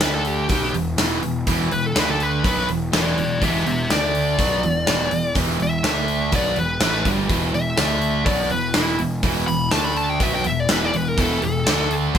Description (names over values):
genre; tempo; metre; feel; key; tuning
hard rock; 124 BPM; 4/4; straight; E minor; A4 = 438 Hz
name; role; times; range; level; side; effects
high-gain lead guitar; melody; 0.0-12.2 s; E4 to B5; -23 LUFS; left 2 dB; distortion
cranked stack guitar; riff; 0.0-12.2 s; E2 to D4; -27 LUFS; left 7 dB; overdrive, phaser
cranked stack guitar; riff; 0.0-12.2 s; E2 to D4; -25 LUFS; right 6 dB; overdrive
fuzz picked electric bass; bass; 0.0-12.2 s; E1 to D2; -25 LUFS; equal; overdrive
gated 80s drum kit; drums; 0.0-12.2 s; hi-hat, kick drum, snare drum; -23 LUFS; equal; none
room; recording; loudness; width
moderate studio reverb, RT60 0.6 s; band playing live in one room; -18 LUFS; side -8 dB against mid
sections
0.0-12.2 A section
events
lead electric guitar solo 0.0-12.2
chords
0.0 D5; 0.5 E5; 2.0 D5; 2.4 Em; 3.9 D5; 4.4 E5; 5.8 D5; 6.3 Em; 7.8 D5; 8.3 E5; 9.7 D5; 10.2 E5; 11.7 D5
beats
0.01 0.49 0.98 | 1.47 1.95 2.44 2.92 | 3.41 3.90 4.38 4.87 | 5.35 5.84 6.32 6.81 | 7.29 7.78 8.27 8.75 | 9.24 9.72 10.21 10.69 | 11.18 11.66 12.15